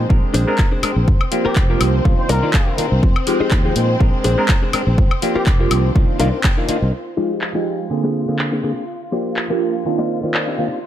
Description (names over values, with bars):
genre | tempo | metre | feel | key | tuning
filtered disco house | 123 BPM | 4/4 | swing 55% on 16ths | F dorian | A4 = 437 Hz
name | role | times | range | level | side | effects
mellow clav | accompaniment | 0.0-10.7 s | D3 to G5 | -21 LUFS | right 2 dB | phaser, sidechain pumping, low-pass filter
rich studio string section | sustained chords | 0.0-10.9 s | C4 to F5 | -27 LUFS | left 2 dB | sidechain pumping, low-pass filter
direct-recorded clean electric guitar | riff | 0.0-10.8 s | Ab3 to Bb5 | -24 LUFS | left 3 dB | sidechain pumping, low-pass filter
fingered electric bass | bass | 0.0-6.9 s | F1 to Bb2 | -18 LUFS | equal | sidechain pumping, low-pass filter
electronic kick drum | drums | 0.1-6.6 s | none | -15 LUFS | equal | none
house drum kit | drums | 0.3-10.5 s | handclaps, hi-hat, woodblock | -24 LUFS | left 2 dB | sidechain pumping on hats, low-pass filter on hats, low-pass filter on snare, sidechain pumping on perc, low-pass filter on perc, low-pass filter on room
muted trumpet section | melody | 0.5-5.6 s | G4 to C5 | -28 LUFS | equal | vintage 12-bit sampler grit, sidechain pumping, low-pass filter, ping-pong delay
room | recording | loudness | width
light reverb | none | -15 LUFS | side -11 dB against mid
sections
0.0-6.9 A section; 6.9-10.9 B section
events
clean electric guitar fill 2.1-3.0, 6.2-6.9, 10.1-10.8; filter sweep 6.9-10.9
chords
0.1 Bb9; 1.1 Gm7; 2.1 Cm11; 3.0 Fm9; 4.0 Bb9; 5.0 Gm7; 6.0 Cm11; 6.9 Fm9; 7.9 Bb9; 8.9 Gm7; 9.9 Cm11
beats
0.10 0.59 | 1.08 1.56 2.05 2.54 | 3.03 3.52 4.00 4.49 | 4.98 5.47 5.96 6.44 | 6.93 7.42 7.91 8.39 | 8.88 9.37 9.86 10.35 | 10.83